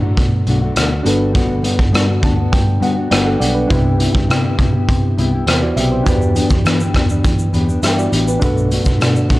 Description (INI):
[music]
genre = indie pop, bedroom pop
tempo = 102 BPM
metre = 4/4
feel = straight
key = unclear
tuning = A4 = 440 Hz
[part]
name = mellow electric guitar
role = accompaniment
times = 0.0-9.4 s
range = B2 to G4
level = -19 LUFS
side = left 2 dB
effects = analog chorus, vibrato effect
[part]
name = reed electric piano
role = accompaniment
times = 0.0-9.4 s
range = D4 to A5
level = -23 LUFS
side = right 3 dB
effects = none
[part]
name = vintage muted picked electric bass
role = bass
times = 0.0-9.4 s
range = G1 to E3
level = -20 LUFS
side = equal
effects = none
[part]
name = raw garage drum kit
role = drums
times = 0.2-9.4 s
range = hi-hat, kick drum, rim click, shaker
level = -16 LUFS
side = equal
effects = none
[sound]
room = small room ambience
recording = cassette tape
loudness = -13 LUFS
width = side -18 dB against mid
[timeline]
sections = 0.0-9.4 A section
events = reed electric piano fill 1.9-3.7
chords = 0.0 Bm7; 1.1 Gmaj7; 3.7 Cmaj7; 6.1 Em7; 8.4 Bm7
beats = 0.17 0.76 | 1.35 1.94 2.53 3.12 | 3.71 4.30 4.89 5.47 | 6.06 6.65 7.24 7.83 | 8.42 9.01